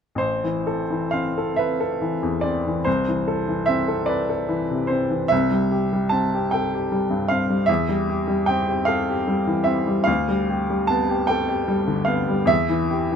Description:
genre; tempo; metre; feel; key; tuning
classical, romantic nocturne for solo piano; 43-52 BPM (dotted quarters); 6/8; rubato; A minor; A4 = 440 Hz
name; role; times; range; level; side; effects
clear upright piano; solo; 0.2-13.2 s; A1 to A5; -20 LUFS; equal; none
room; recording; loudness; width
light reverb; close, detailed microphones; -20 LUFS; side -7 dB against mid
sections
0.2-13.2 A section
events
none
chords
0.2 Am; 2.9 Am/C; 5.3 C; 7.7 C/E; 10.1 G7/D; 12.5 C/E (rootless)

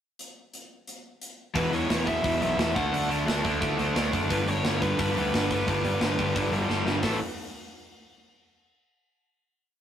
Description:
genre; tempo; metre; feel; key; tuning
punk rock; 176 BPM; 4/4; straight; A mixolydian; A4 = 438 Hz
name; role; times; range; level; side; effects
tight metal drum kit; drums; 0.2-7.1 s; hi-hat, kick drum, snare drum; -31 LUFS; equal; none
cranked stack guitar; riff; 1.5-7.2 s; E2 to D4; -27 LUFS; equal; overdrive
bluesy overdriven lead guitar; melody; 1.6-7.2 s; A4 to F#5; -30 LUFS; equal; distortion
fuzz picked electric bass; bass; 1.6-7.2 s; E1 to D2; -30 LUFS; equal; overdrive
room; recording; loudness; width
light reverb; rough rehearsal-room recording, tube saturation; -24 LUFS; side -9 dB against mid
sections
0.2-1.5 pickup bar; 1.5-7.0 verse; 7.0-8.4 final chord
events
drum fill 6.7-7.0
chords
0.2 N.C.; 1.5 E5; 2.7 D; 4.3 G; 7.0 A5

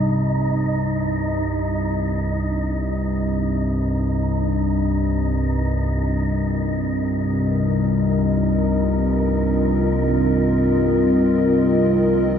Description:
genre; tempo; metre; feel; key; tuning
ambient; free time; none; none; C minor; A4 = 439 Hz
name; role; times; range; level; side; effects
analog drone; drone; 0.0-12.4 s; C2 to G2; -20 LUFS; left 1 dB; chorus
wind-like tuned noise texture; texture; 0.0-12.4 s; Eb4 to Eb5; -27 LUFS; right 1 dB; built-in reverb
dark analog pad; sustained chords; 6.0-12.4 s; C4 to Eb5; -21 LUFS; equal; chorus
room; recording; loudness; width
wet huge ambient reverb, RT60 7.8 s; none; -18 LUFS; side -8 dB against mid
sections
0.0-12.4 A section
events
fade-out on synth texture 0.0-12.4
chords
0.0 Cm

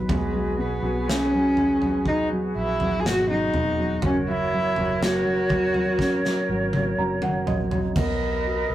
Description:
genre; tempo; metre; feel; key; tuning
pop ballad; 61 BPM; 4/4; straight; unclear; A4 = 440 Hz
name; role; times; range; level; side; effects
felt-muted upright piano; accompaniment; 0.0-8.7 s; B2 to A#5; -27 LUFS; equal; none
small flute group; sustained chords; 0.0-8.7 s; F#4 to D#5; -28 LUFS; right 1 dB; none
vintage muted fingered electric bass; bass; 0.0-8.7 s; E1 to B1; -32 LUFS; equal; none
dark cello; melody; 0.1-6.5 s; G#3 to G#4; -24 LUFS; equal; none
modern studio drum kit; drums; 0.1-8.2 s; crash cymbal, kick drum, snare drum, toms; -29 LUFS; right 1 dB; none
room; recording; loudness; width
light reverb; rough rehearsal-room recording; -21 LUFS; side -13 dB against mid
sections
0.0-8.0 A section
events
drum fill 6.0-8.0; felt piano fill 6.5-8.0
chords
0.1 G#m7/B; 4.0 F#; 8.0 Bmaj7

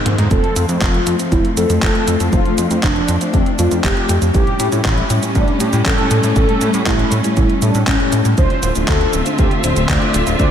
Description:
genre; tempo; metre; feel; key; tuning
italo disco; 119 BPM; 4/4; straight; F major; A4 = 440 Hz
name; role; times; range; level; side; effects
warm studio string section; sustained chords; 0.0-10.5 s; D3 to E5; -20 LUFS; left 2 dB; none
tine electric piano; stabs; 0.0-10.5 s; Ab2 to C#5; -25 LUFS; equal; wide subtle chorus, ping-pong delay
chorused synth bass; bass; 0.1-10.5 s; D1 to A2; -18 LUFS; equal; none
gated 80s digital drum machine; drums; 0.1-10.5 s; cabasa, handclaps, hi-hat, toms; -22 LUFS; right 1 dB; gated reverb, overdrive
mellow synth brass; melody; 0.3-10.5 s; C4 to D5; -20 LUFS; equal; chorus, ping-pong delay
electronic kick drum; drums; 0.3-10.5 s; none; -17 LUFS; equal; none
room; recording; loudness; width
moderate cathedral reverb, RT60 6.3 s; dreamy mix soaked in reverb; -13 LUFS; side -9 dB against mid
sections
0.0-10.5 A section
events
drum fill 0.0-0.3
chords
0.3 F; 4.3 A7; 8.4 Dm7

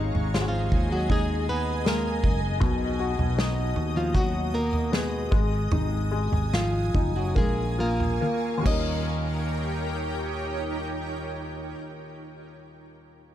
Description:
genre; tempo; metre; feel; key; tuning
pop ballad; 67-79 BPM; 4/4; straight; unclear; A4 = 440 Hz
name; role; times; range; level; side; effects
warm upright piano; accompaniment; 0.0-13.3 s; Eb2 to Bb4; -32 LUFS; left 4 dB; none
shimmering ambient pad; sustained chords; 0.0-11.7 s; Eb4 to D#6; -34 LUFS; right 1 dB; chorus, built-in reverb
sustaining fretless electric bass; bass; 0.0-11.7 s; Gb1 to Eb2; -29 LUFS; equal; wide subtle chorus
unplugged drum kit; drums; 0.1-8.9 s; crash cymbal, kick drum, snare drum, toms; -27 LUFS; equal; none
flamenco guitar; melody; 0.3-11.7 s; F3 to D#5; -30 LUFS; right 1 dB; none
room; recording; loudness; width
small room ambience; dark, warm production; -23 LUFS; side -12 dB against mid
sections
0.0-9.1 A section; 9.1-12.7 B section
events
slowing down 2.6-9.1; drum fill 8.2-9.1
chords
0.0 Abm7; 2.6 B; 5.3 Ab5; 7.4 Bbm7; 8.7 Eb7

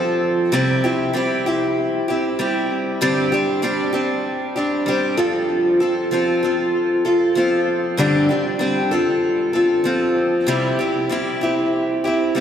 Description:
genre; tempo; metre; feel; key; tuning
rock; 96 BPM; 4/4; straight; unclear; A4 = 440 Hz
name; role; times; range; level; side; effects
picked steel-string acoustic guitar; solo; 0.0-12.4 s; G2 to A4; -17 LUFS; equal; lush chorus, analog delay
room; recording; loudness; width
wet cathedral reverb, RT60 5.5 s; dreamy mix soaked in reverb; -17 LUFS; side -9 dB against mid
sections
0.0-12.4 A section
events
none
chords
0.0 F; 0.5 C; 3.0 Gsus4; 5.2 F; 8.0 Gsus4; 8.9 F; 10.5 C

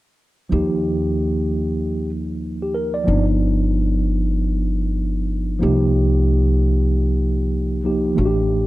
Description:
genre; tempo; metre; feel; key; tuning
hip hop, jazz-hop; 94 BPM; 4/4; swing 61% on 16ths; Eb major; A4 = 440 Hz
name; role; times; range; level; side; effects
mellow tine electric piano; accompaniment; 0.5-8.7 s; E3 to D5; -20 LUFS; right 1 dB; medium stereo tremolo
upright bass; bass; 0.5-8.7 s; G1 to Eb2; -20 LUFS; equal; none
room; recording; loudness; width
little or no reverb; none; -17 LUFS; side -17 dB against mid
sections
0.5-8.7 A section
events
none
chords
0.5 Ebadd9; 3.1 G7b13; 5.6 Cm7

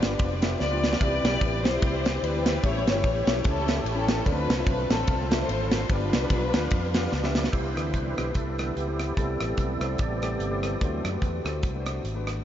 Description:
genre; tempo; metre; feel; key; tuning
uptempo gospel; 147 BPM; 4/4; swing 57% on 8ths; C major; A4 = 445 Hz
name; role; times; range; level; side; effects
warm studio string section; melody; 0.0-7.1 s; C4 to D5; -29 LUFS; left 2 dB; diffuse ambient delay
dark grand piano; accompaniment; 0.0-12.4 s; G2 to G5; -34 LUFS; left 4 dB; none
percussive tonewheel organ; sustained chords; 0.0-11.1 s; C3 to G5; -33 LUFS; right 2 dB; slow rotary speaker, overdrive, chorus vibrato
fingered electric bass; bass; 0.0-12.4 s; F1 to F#2; -30 LUFS; equal; none
modern studio drum kit; drums; 0.0-12.4 s; crash cymbal, hi-hat, kick drum, ride cymbal, rim click, snare drum; -27 LUFS; right 1 dB; none
warm French horn section; sustained chords; 7.5-12.4 s; C3 to G4; -41 LUFS; left 1 dB; none
room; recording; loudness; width
moderate huge ambient reverb, RT60 7.2 s; dreamy mix soaked in reverb, nothing above 7.5 kHz; -23 LUFS; side -10 dB against mid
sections
0.0-7.5 A section; 7.5-12.4 B section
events
drum fill 0.6-1.0, 7.1-7.5; tonewheel organ fill 6.3-7.5; tonewheel organ solo 7.5-12.4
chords
0.0 G7; 1.0 Cmaj7; 2.6 A7; 4.3 Dm7; 5.9 G7; 7.5 Cmaj7; 9.2 Am7; 10.8 D7

